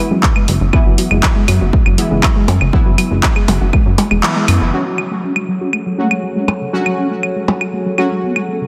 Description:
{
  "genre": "melodic techno",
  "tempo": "120 BPM",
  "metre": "4/4",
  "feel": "straight",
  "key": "F# minor",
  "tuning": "A4 = 439 Hz",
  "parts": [
    { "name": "warbly dusty pluck", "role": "arpeggios", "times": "0.0-8.7 s", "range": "C#3 to F#4", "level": "-23 LUFS", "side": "equal", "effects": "chorus, sidechain pumping, delay" },
    { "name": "synth brass stab", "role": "stabs", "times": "0.0-8.7 s", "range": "E3 to F#4", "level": "-24 LUFS", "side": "equal", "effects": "chorus, sidechain pumping, delay" },
    { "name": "plucky analog bass", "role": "bass", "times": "0.1-4.7 s", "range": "E1 to F#2", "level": "-17 LUFS", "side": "equal", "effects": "sidechain pumping" },
    { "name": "electronic kick drum", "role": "drums", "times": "0.2-3.8 s", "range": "none", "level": "-16 LUFS", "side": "equal", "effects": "none" },
    { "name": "techno drum kit", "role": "drums", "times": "0.2-8.5 s", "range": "claves, handclaps, hi-hat, percussion blips", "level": "-21 LUFS", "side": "equal", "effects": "none" },
    { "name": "mellow synth brass", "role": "melody", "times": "4.7-8.7 s", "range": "F#3 to F#4", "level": "-25 LUFS", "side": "equal", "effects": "chorus, delay" },
    { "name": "dark analog pad", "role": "sustained chords", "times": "5.3-8.7 s", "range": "F#3 to C#5", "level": "-27 LUFS", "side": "equal", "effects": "chorus, phaser, sidechain pumping" }
  ],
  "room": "moderate church reverb, RT60 3.6 s",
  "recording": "dreamy mix soaked in reverb",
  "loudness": "-14 LUFS",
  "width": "mono",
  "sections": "0.0-4.7 A section; 4.7-8.7 B section",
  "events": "filter sweep on synth arpeggio sound 0.0-4.7; kick drops out 4.2-4.7; band accent 4.2; filter sweep on analog polysynth 4.7-8.7; filter sweep on synth stab 4.7-8.7",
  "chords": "0.0 Eadd9/F#; 4.7 F#madd9"
}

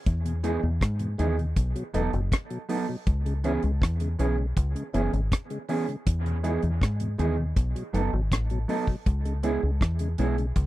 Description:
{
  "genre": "dub reggae",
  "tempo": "80 BPM",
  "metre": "4/4",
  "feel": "straight",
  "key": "C# minor",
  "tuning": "A4 = 440 Hz",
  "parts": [
    { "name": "deep dub fingered electric bass", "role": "bass", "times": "0.1-10.7 s", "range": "E1 to G#2", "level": "-26 LUFS", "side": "equal", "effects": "none" },
    { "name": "deep reggae drum kit", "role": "drums", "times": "0.1-10.7 s", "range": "hi-hat, kick drum, rim click", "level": "-26 LUFS", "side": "equal", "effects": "none" },
    { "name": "mellow tonewheel organ", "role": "accompaniment", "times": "0.2-10.5 s", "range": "E2 to E4", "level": "-32 LUFS", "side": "left 2 dB", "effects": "overdrive, chorus vibrato, slow rotary speaker" },
    { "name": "mellow electric guitar", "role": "accompaniment", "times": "0.4-10.4 s", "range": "E3 to A4", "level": "-31 LUFS", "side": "right 4 dB", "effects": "dub echo" }
  ],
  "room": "little or no reverb",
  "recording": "dry, close 1970s-style studio recording",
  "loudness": "-24 LUFS",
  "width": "side -16 dB against mid",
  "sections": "0.0-10.7 A section",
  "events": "none",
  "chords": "0.1 Emaj7; 1.6 B7; 3.1 C#m7; 6.1 Emaj7; 7.6 B7; 9.1 C#m7"
}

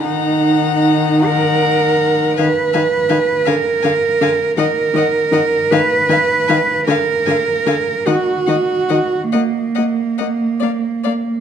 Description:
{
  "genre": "classical, slow romantic movement for string quartet",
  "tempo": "45-56 BPM (dotted quarters)",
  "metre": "6/8",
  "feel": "rubato",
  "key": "Eb minor",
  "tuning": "A4 = 437 Hz",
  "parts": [
    { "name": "warm violin", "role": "melody", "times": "0.0-11.1 s", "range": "F5 to Bb5", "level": "-27 LUFS", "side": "left 11 dB", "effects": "none" },
    { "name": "warm violin", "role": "second line", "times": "0.0-11.1 s", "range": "D5 to Gb5", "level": "-23 LUFS", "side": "left 9 dB", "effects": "none" },
    { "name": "dark viola", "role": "accompaniment", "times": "0.0-11.1 s", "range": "D3 to Bb3", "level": "-20 LUFS", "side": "left 2 dB", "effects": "none" },
    { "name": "warm cello", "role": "bass", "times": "0.0-11.4 s", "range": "Bb3 to Cb5", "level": "-15 LUFS", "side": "right 4 dB", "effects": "none" }
  ],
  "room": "moderate recital hall reverb, RT60 1.6 s",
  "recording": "dark, warm production",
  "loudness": "-13 LUFS",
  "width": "side -8 dB against mid",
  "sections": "0.0-11.4 A section",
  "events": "none",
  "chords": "0.0 Ebm; 2.4 F7(b5, no3)/Eb (rootless); 3.5 Bb/D; 4.6 Eb5; 5.7 Fm7b5/Eb; 6.9 Bb/D; 8.1 Ebm; 9.3 N.C."
}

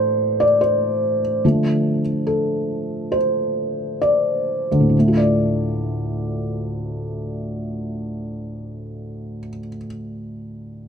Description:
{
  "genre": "pop",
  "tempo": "65-74 BPM",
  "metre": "4/4",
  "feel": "straight",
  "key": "D minor",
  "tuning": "A4 = 440 Hz",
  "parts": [
    { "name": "felt-muted upright piano", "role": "accompaniment", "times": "0.0-10.9 s", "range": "D2 to D5", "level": "-19 LUFS", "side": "equal", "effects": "none" }
  ],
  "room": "light reverb",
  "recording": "none",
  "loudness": "-18 LUFS",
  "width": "side -7 dB against mid",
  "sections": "0.0-4.9 A section; 4.9-8.6 B section",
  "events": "slowing down 0.0-4.9; felt piano solo 0.0-4.9",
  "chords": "0.0 Asus4; 1.4 Dm"
}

